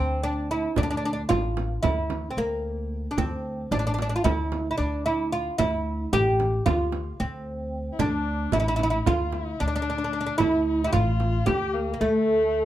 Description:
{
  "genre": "Turkish makam ensemble",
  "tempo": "224 BPM (eighths)",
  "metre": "9/8",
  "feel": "straight",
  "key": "D makam ussak",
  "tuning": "A4 = 439 Hz",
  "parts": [
    { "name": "oud", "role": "melody", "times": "0.0-12.7 s", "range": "A3 to G4", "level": "-25 LUFS", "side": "right 1 dB", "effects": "plate reverb" },
    { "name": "upright bass", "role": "bass", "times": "0.0-12.7 s", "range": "A1 to D2", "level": "-28 LUFS", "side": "equal", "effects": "none" },
    { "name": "frame drum", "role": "percussion", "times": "0.8-11.6 s", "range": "none", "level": "-29 LUFS", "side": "right 5 dB", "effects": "none" },
    { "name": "rich kamancheh", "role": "second line", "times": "7.9-12.7 s", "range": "A3 to G4", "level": "-31 LUFS", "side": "left 5 dB", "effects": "none" }
  ],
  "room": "moderate studio ambience, RT60 0.5 s",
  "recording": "dark, warm production",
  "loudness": "-23 LUFS",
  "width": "side -13 dB against mid",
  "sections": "0.0-12.7 A section",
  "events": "none",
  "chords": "none"
}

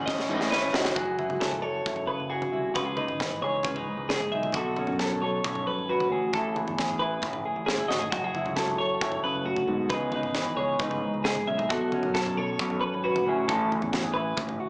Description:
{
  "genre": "math rock and midwest emo",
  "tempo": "134 BPM",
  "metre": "4/4",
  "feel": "straight",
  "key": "unclear",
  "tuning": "A4 = 440 Hz",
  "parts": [
    { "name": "mellow electric guitar", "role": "accompaniment", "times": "0.0-14.7 s", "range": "F#2 to B4", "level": "-33 LUFS", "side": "equal", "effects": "slapback echo" },
    { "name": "twelve-string electric guitar", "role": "arpeggios", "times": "0.0-14.4 s", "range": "F#4 to E5", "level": "-32 LUFS", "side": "equal", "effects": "digital delay, slapback echo" },
    { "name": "overdriven electric guitar", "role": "riff", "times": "0.0-1.0 s", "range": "A2 to E4", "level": "-34 LUFS", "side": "equal", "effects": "slapback echo" },
    { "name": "growling fingered electric bass", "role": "bass", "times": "0.0-14.6 s", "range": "F#1 to A2", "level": "-38 LUFS", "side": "equal", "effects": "overdrive" },
    { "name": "crisp fusion drum kit", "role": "drums", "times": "0.1-14.6 s", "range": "kick drum, snare drum, toms", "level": "-35 LUFS", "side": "equal", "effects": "none" }
  ],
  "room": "light reverb",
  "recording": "live gig heard through the venue's PA, club reverb, small speaker sound",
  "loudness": "-28 LUFS",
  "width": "mono",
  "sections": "1.0-14.7 A section",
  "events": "drum fill 0.1-1.0, 7.9",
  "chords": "0.0 Amaj9#11; 1.0 F#m11; 2.8 C#m9; 4.5 Bsus2; 6.1 Amaj7; 8.1 F#m11; 9.9 C#m9; 11.7 Bsus2; 13.3 Amaj7"
}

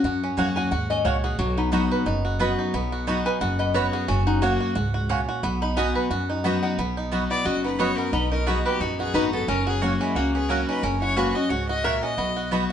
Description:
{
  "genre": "bluegrass",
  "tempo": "178 BPM",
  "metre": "4/4",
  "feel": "swing 55% on 8ths",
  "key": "B major",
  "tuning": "A4 = 439 Hz",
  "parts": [
    { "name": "bluegrass banjo", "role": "melody", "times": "0.0-12.7 s", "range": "F#3 to B4", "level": "-28 LUFS", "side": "right 3 dB", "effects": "none" },
    { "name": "picked steel-string acoustic guitar", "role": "accompaniment", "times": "0.0-12.7 s", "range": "F#2 to F#4", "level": "-26 LUFS", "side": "left 2 dB", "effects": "none" },
    { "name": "upright bass", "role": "bass", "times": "0.0-12.7 s", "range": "F#1 to F#2", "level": "-28 LUFS", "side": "equal", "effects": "none" },
    { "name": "mandolin", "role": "stabs", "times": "0.4-12.6 s", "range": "A#3 to B5", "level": "-30 LUFS", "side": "right 5 dB", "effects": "none" },
    { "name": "lap resonator guitar", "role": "second line", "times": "0.6-12.5 s", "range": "G#3 to B5", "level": "-29 LUFS", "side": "left 4 dB", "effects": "none" },
    { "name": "clear fiddle", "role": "melody", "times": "7.3-12.5 s", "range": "E4 to E5", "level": "-28 LUFS", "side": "left 2 dB", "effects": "none" }
  ],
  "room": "moderate stone room reverb, RT60 1.1 s",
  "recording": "band playing live in one room, nothing above 10.3 kHz",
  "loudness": "-21 LUFS",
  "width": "side -9 dB against mid",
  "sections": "0.0-6.8 A section; 6.8-12.7 B section",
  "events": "resonator guitar played with a steel bar solo 0.0-6.8",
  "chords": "0.0 F#; 1.4 B; 4.1 F#; 5.4 B; 9.5 F#; 12.2 B"
}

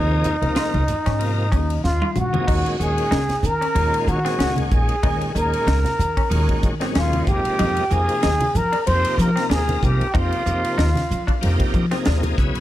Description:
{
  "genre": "electric jazz fusion",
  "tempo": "94 BPM",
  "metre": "4/4",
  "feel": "swing 55% on 16ths",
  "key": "Eb dorian",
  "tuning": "A4 = 436 Hz",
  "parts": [
    { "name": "trumpet with plunger mute", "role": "melody", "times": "0.0-11.4 s", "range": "Eb4 to C5", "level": "-24 LUFS", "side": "equal", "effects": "none" },
    { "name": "mellow silver concert flute", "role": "second line", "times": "0.0-11.4 s", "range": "Eb5 to C6", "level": "-30 LUFS", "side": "equal", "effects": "none" },
    { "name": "bright tonewheel organ", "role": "accompaniment", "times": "0.0-12.6 s", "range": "Bb2 to Bb4", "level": "-27 LUFS", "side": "equal", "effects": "slow rotary speaker, overdrive, chorus vibrato" },
    { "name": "semi-hollow electric guitar", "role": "stabs", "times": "0.0-12.3 s", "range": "C4 to F4", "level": "-32 LUFS", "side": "left 2 dB", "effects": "wide subtle chorus" },
    { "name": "upright bass", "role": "bass", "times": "0.0-12.6 s", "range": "Bb1 to F3", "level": "-21 LUFS", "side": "equal", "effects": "none" },
    { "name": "crisp fusion drum kit", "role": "drums", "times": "0.2-12.6 s", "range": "crash cymbal, hi-hat, kick drum, ride cymbal, snare drum, toms", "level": "-25 LUFS", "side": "equal", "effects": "none" },
    { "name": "congas", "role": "percussion", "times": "0.3-12.4 s", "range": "none", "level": "-27 LUFS", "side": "right 1 dB", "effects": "none" }
  ],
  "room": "small room reverb",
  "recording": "dark, warm production",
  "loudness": "-18 LUFS",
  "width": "side -14 dB against mid",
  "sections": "0.0-2.5 A section; 2.5-12.6 B section",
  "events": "drum fill 1.8-2.5",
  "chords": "0.0 Eb9sus4; 2.5 Ebm9; 7.3 Fm9"
}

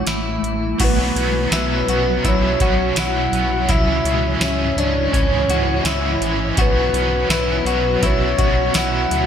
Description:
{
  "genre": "dream pop",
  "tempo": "83 BPM",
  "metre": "4/4",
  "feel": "straight",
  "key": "unclear",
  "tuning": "A4 = 441 Hz",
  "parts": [
    { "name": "soft octave-layered synth lead", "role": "melody", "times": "0.0-9.3 s", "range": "B4 to F#5", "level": "-22 LUFS", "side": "left 2 dB", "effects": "chorus, ping-pong delay" },
    { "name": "granular cloud pad", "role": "sustained chords", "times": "0.0-9.3 s", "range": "G#2 to C#5", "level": "-24 LUFS", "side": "right 2 dB", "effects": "built-in reverb, analog chorus" },
    { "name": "clean electric guitar", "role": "arpeggios", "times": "0.0-9.3 s", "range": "C#4 to F#4", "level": "-24 LUFS", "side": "left 4 dB", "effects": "wide subtle chorus, ping-pong delay" },
    { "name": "round analog bass", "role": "bass", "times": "0.0-9.3 s", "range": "A1 to D2", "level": "-24 LUFS", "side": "equal", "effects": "none" },
    { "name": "booming analog drum machine", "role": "drums", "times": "0.1-9.3 s", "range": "crash cymbal, hi-hat, kick drum, snare drum, tambourine", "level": "-21 LUFS", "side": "equal", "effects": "gated reverb" },
    { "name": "cranked stack guitar", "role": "accompaniment", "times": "0.8-9.3 s", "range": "B2 to C#4", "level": "-23 LUFS", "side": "right 2 dB", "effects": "overdrive, tremolo, analog chorus" }
  ],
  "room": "moderate lush hall reverb, RT60 1.8 s",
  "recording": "bright 1980s-style digital production",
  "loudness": "-16 LUFS",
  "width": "side -8 dB against mid",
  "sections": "0.8-9.3 A section",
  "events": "none",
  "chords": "0.0 Amaj7(no3); 0.8 Bsus2; 3.7 C#m; 6.6 Bsus2"
}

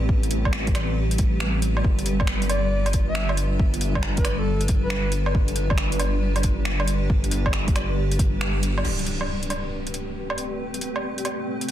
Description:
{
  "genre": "future garage",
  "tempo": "137 BPM",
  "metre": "4/4",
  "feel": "swing 66% on 16ths",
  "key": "A minor",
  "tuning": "A4 = 435 Hz",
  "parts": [
    { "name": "granular cloud pad", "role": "sustained chords", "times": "0.0-11.7 s", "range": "G3 to B4", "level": "-29 LUFS", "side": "equal", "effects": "built-in reverb, vintage 12-bit sampler grit, sidechain pumping" },
    { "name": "dark detuned saw bass", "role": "bass", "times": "0.0-8.8 s", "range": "G1 to A1", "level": "-24 LUFS", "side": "equal", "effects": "sidechain pumping" },
    { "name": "electronic kick drum", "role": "drums", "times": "0.1-8.3 s", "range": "none", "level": "-23 LUFS", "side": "equal", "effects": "overdrive" },
    { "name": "deep house drum kit", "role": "drums", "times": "0.2-11.7 s", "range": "crash cymbal, finger snaps, hi-hat, woodblock", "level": "-29 LUFS", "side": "right 1 dB", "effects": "overdrive, soft clipping on snare" },
    { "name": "breathy flute-like synth lead", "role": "melody", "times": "2.5-5.1 s", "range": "A4 to E5", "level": "-32 LUFS", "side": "equal", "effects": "chorus, cassette tape, ping-pong delay" },
    { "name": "impact", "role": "sound effects", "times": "8.8-10.6 s", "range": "none", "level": "-32 LUFS", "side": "equal", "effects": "none" },
    { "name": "wind-like tuned noise texture", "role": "texture", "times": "9.7-11.7 s", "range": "G4", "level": "-36 LUFS", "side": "left 2 dB", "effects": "built-in reverb" }
  ],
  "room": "digital ambience",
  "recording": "dense, heavily limited modern master, vinyl crackle",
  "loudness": "-21 LUFS",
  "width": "side -12 dB against mid",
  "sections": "0.0-8.8 A section; 8.8-11.7 B section",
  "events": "band accent 8.4; impact 8.8-10.6",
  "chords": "0.0 Am9; 1.8 G7; 8.8 Am9"
}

